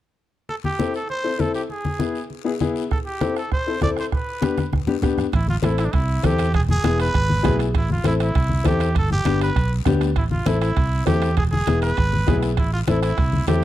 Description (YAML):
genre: latin, cumbia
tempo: 199 BPM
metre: 4/4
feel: straight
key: A minor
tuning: A4 = 439 Hz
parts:
  - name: growling trumpet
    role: melody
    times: 0.5-13.6 s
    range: D4 to D5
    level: -26 LUFS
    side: right 2 dB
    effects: none
  - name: congas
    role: percussion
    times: 0.5-13.6 s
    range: none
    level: -25 LUFS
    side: left 2 dB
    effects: none
  - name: guiro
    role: percussion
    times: 0.5-13.6 s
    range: none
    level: -41 LUFS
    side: left 14 dB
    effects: none
  - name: clear upright piano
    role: accompaniment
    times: 0.8-13.6 s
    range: B3 to A4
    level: -24 LUFS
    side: left 6 dB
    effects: none
  - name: bombo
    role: percussion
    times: 2.9-13.6 s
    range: none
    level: -24 LUFS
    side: right 2 dB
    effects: none
  - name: fingered electric bass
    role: bass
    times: 5.3-13.6 s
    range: E1 to E2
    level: -21 LUFS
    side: right 1 dB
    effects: none
  - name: timbales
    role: percussion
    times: 5.3-13.6 s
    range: none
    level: -34 LUFS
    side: right 9 dB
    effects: none
room: studio ambience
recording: dry, close 1970s-style studio recording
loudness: -18 LUFS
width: side -13 dB against mid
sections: 0.5-5.3 A section; 5.3-13.6 B section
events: drum fill 4.6-5.3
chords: 0.5 Am; 1.7 E; 2.9 Am; 4.1 G; 5.3 Am; 6.5 E; 7.7 Am; 9.0 G; 10.2 Am; 11.4 E; 12.6 Am